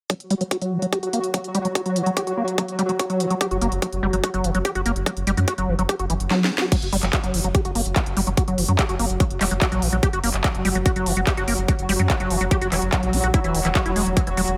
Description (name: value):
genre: psychedelic trance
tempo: 145 BPM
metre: 4/4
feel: straight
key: unclear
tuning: A4 = 442 Hz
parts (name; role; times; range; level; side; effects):
- pulsing gated texture; sustained chords; 0.4-14.6 s; F#3 to F#4; -30 LUFS; equal; chorus, built-in reverb, sidechain pumping
- liquid acid bass; riff; 0.1-14.4 s; D#3 to G4; -26 LUFS; equal; chorus, sidechain pumping, dub echo
- electronic kick drum; drums; 0.1-14.2 s; none; -24 LUFS; equal; high-pass filter on kick
- techno drum kit; drums; 0.1-14.6 s; crash cymbal, handclaps, hi-hat, snare drum; -29 LUFS; equal; none
- round analog bass; bass; 3.5-14.5 s; E1 to F#2; -27 LUFS; equal; none
room: light reverb, digital ambience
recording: none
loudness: -22 LUFS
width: mono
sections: 0.1-6.7 A section; 6.7-14.6 B section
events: filter sweep on acid bass 0.1-6.7, 6.7-14.6; drum fill 6.3-6.7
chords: 0.1 N.C.; 13.3 E5